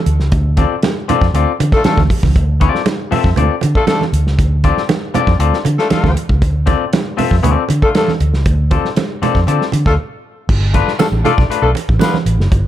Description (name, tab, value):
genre	funk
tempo	118 BPM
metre	4/4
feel	straight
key	D dorian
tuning	A4 = 440 Hz
part	vintage muted fingered electric bass	bass	0.1-12.6 s	F#1 to D3	-14 LUFS	equal	none
part	warm soul drum kit	drums	0.1-12.6 s	crash cymbal, hi-hat, kick drum, snare drum	-17 LUFS	equal	none
part	twangy electric guitar	accompaniment	0.6-11.7 s	A3 to E5	-18 LUFS	left 9 dB	none
part	congas	percussion	0.6-12.3 s	none	-21 LUFS	right 8 dB	none
part	warm horn section	second line	1.7-12.2 s	A3 to B4	-18 LUFS	left 2 dB	none
part	tambourine	percussion	11.0-12.1 s	none	-37 LUFS	left 4 dB	none
room	small room ambience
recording	none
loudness	-12 LUFS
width	side -12 dB against mid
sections	0.0-10.5 A section; 10.5-12.7 B section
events	break 10.0-10.5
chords	0.0 Dm7; 10.5 G9